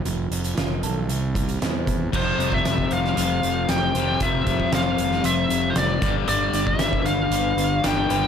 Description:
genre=quiet-loud alternative rock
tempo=116 BPM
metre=4/4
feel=straight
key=unclear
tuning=A4 = 444 Hz
part: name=semi-hollow electric guitar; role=arpeggios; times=0.0-8.3 s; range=C3 to C5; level=-30 LUFS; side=right 8 dB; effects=phaser
part: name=fuzz fingered electric bass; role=bass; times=0.0-8.3 s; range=F1 to E2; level=-27 LUFS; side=equal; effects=overdrive
part: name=oversized low-tuned drum kit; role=drums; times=0.1-8.2 s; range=crash cymbal, hi-hat, kick drum, snare drum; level=-26 LUFS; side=right 1 dB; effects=none
part: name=distorted electric guitar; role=riff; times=2.1-8.3 s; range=F2 to G3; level=-25 LUFS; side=left 12 dB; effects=distortion
part: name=biting lead guitar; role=melody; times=2.2-8.3 s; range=C5 to G5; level=-24 LUFS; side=right 1 dB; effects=overdrive, slapback echo
room=light reverb, small room ambience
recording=none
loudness=-20 LUFS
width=side -8 dB against mid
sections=0.0-2.1 A section; 2.1-8.3 B section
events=none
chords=0.0 F; 1.1 C; 2.1 Fsus2; 6.0 G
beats=| 0.06 0.58 1.10 1.62 | 2.14 2.66 3.18 3.69 | 4.21 4.73 5.25 5.77 | 6.29 6.81 7.33 7.85

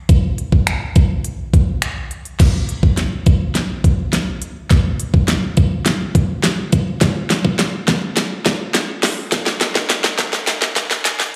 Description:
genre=pop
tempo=104 BPM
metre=4/4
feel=straight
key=none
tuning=none
part: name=pop drum kit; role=drums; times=0.1-11.3 s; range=crash cymbal, finger snaps, hi-hat, kick drum, snare drum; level=-17 LUFS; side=equal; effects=none
room=moderate club reverb, RT60 0.7 s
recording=live gig heard through the venue's PA, recital hall reverb, high-pass filter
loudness=-17 LUFS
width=mono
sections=0.0-2.4 A section; 2.4-11.4 B section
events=build-up 2.4-11.4; drum fill 2.4-11.4; filter sweep 2.4-11.4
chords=none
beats=| 0.09 0.67 1.25 1.82 | 2.40 2.98 3.55 4.13 | 4.71 5.28 5.86 6.44 | 7.01 7.59 8.17 8.74 | 9.32 9.90 10.48 11.05

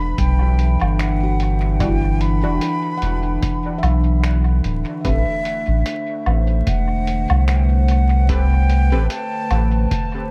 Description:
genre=ambient dub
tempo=74 BPM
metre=4/4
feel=swing 56% on 16ths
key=E minor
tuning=A4 = 444 Hz
part: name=breathy concert flute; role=melody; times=0.0-9.9 s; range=E5 to B5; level=-29 LUFS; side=equal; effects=vintage 12-bit sampler grit, dub echo
part: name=warbly tape-like pad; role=sustained chords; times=0.0-10.3 s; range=D3 to E5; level=-27 LUFS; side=equal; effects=chorus, built-in reverb
part: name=filtered dub chord stab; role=stabs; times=0.0-9.1 s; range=F#3 to B4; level=-33 LUFS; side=equal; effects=chorus, dub echo
part: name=soft dub sub bass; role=bass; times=0.0-9.9 s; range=D1 to C2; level=-19 LUFS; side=equal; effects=none
part: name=electronic kick drum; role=drums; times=0.2-10.1 s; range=none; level=-27 LUFS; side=equal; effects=none
part: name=lo-fi sampler-style drum kit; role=drums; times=0.2-10.1 s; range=finger snaps, hi-hat, woodblock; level=-32 LUFS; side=equal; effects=dub echo
part: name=handpan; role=arpeggios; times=1.2-6.5 s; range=E4 to F#5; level=-36 LUFS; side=equal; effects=dub echo
room=little or no reverb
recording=echo-heavy mix, vinyl crackle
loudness=-18 LUFS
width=mono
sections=0.0-10.3 A section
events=none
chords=0.0 Em9; 5.0 Am9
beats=0.18 0.99 | 1.80 2.61 3.42 4.24 | 5.05 5.86 6.67 7.48 | 8.29 9.10 9.91

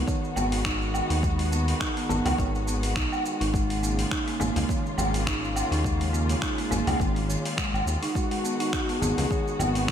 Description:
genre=organic downtempo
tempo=104 BPM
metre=4/4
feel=swing 56% on 16ths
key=G# dorian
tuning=A4 = 438 Hz
part: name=muted studio string section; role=sustained chords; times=0.0-9.9 s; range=C#3 to F#4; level=-33 LUFS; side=left 1 dB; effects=sidechain pumping
part: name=folk marimba with medium mallets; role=arpeggios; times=0.0-9.9 s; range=D#3 to D#4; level=-30 LUFS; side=right 1 dB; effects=vintage 12-bit sampler grit, ping-pong delay, slapback echo
part: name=smooth synth bass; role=bass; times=0.0-9.9 s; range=G#1 to D#2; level=-28 LUFS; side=equal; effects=none
part: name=dusty soul sampler-style drum kit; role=drums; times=0.1-9.9 s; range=finger snaps, hi-hat, shaker, woodblock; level=-31 LUFS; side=equal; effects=none
part: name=electronic kick drum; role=drums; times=0.1-9.9 s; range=none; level=-30 LUFS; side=equal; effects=overdrive
part: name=frame drum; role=percussion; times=0.4-9.7 s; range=none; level=-35 LUFS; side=left 3 dB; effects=none
part: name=dark duduk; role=melody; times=8.2-9.9 s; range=F#4 to G#4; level=-32 LUFS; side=left 2 dB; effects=digital delay, slapback echo
room=moderate lush hall reverb, RT60 2.6 s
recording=big arena sound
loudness=-24 LUFS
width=side -9 dB against mid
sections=0.0-9.9 A section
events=none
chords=0.0 G#m7; 3.5 C#6/G#; 8.2 G#m7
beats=0.07 0.65 | 1.23 1.81 2.38 2.96 | 3.54 4.11 4.69 5.27 | 5.84 6.42 7.00 7.58 | 8.15 8.73 9.31 9.88

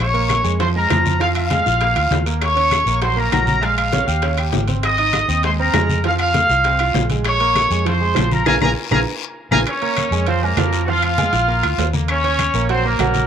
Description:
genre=latin, salsa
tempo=198 BPM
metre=4/4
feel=straight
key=Bb minor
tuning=A4 = 440 Hz
part: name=bright trumpet section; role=melody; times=0.0-13.3 s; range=Bb3 to Eb6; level=-18 LUFS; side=equal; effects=none
part: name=vintage muted fingered electric bass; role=bass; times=0.0-13.3 s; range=Ab1 to F2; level=-21 LUFS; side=left 1 dB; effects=none
part: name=bongos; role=percussion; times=0.0-9.6 s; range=none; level=-27 LUFS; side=left 14 dB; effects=none
part: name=congas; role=percussion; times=0.0-13.3 s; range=none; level=-25 LUFS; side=left 2 dB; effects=none
part: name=clear concert grand piano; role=accompaniment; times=0.1-13.2 s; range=F3 to F6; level=-24 LUFS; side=right 11 dB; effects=none
part: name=timbales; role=percussion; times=0.1-13.3 s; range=none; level=-28 LUFS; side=right 12 dB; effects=none
part: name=claves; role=percussion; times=0.3-13.1 s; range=none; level=-27 LUFS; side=left 16 dB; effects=none
part: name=guiro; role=percussion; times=0.3-13.3 s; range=none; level=-31 LUFS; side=left 14 dB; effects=none
room=light reverb, small room ambience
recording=1960s-style stereo with parts hard left and right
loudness=-15 LUFS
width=side -8 dB against mid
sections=0.0-9.7 A section; 9.7-13.3 A section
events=band accent 8.5-9.7; drum fill 8.8-9.7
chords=0.0 Bbm7; 1.8 Bb; 2.4 Ebm7; 3.6 Bbm7; 4.2 Eb9; 4.8 Ab69; 6.0 F; 7.3 Bbm7; 10.9 Fmadd11; 11.5 Bb; 12.1 Ebm7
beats=| 0.00 0.30 0.60 0.90 | 1.21 1.51 1.81 2.11 | 2.41 2.72 3.02 3.32 | 3.62 3.93 4.23 4.53 | 4.83 5.14 5.44 5.74 | 6.04 6.35 6.65 6.95 | 7.25 7.56 7.86 8.16 | 8.46 8.77 9.07 9.37 | 9.67 9.97 10.28 10.58 | 10.88 11.18 11.48 11.78 | 12.09 12.39 12.69 12.99

